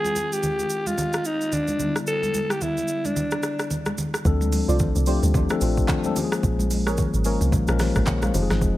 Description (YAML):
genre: amapiano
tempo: 110 BPM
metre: 4/4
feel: swing 58% on 16ths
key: unclear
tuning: A4 = 441 Hz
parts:
  - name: breathy alto saxophone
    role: melody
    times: 0.0-3.7 s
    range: D4 to A4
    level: -25 LUFS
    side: equal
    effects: low-pass filter, digital delay
  - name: mellow tine electric piano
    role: accompaniment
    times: 0.0-8.8 s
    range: D3 to F5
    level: -27 LUFS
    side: left 4 dB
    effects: low-pass filter
  - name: congas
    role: percussion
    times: 0.0-8.5 s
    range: none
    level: -30 LUFS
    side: right 2 dB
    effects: none
  - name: smooth R&B drum kit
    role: drums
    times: 0.1-8.8 s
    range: handclaps, hi-hat, kick drum, rim click, shaker, snare drum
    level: -27 LUFS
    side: right 1 dB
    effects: overdrive
  - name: deep log drum bass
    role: bass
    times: 4.3-8.8 s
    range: F1 to D2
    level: -23 LUFS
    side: right 1 dB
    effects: none
  - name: deep mellow chord stab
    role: stabs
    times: 4.7-7.4 s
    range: F4 to D5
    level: -30 LUFS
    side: right 3 dB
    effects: chorus, phaser, digital delay
room: digital ambience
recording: none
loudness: -20 LUFS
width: side -16 dB against mid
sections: 0.0-4.3 A section; 4.3-8.8 B section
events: filter sweep 0.0-4.3; drop 4.3-8.8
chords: 0.0 Fm7; 1.8 Em7; 4.3 Dm7; 6.2 Bbm7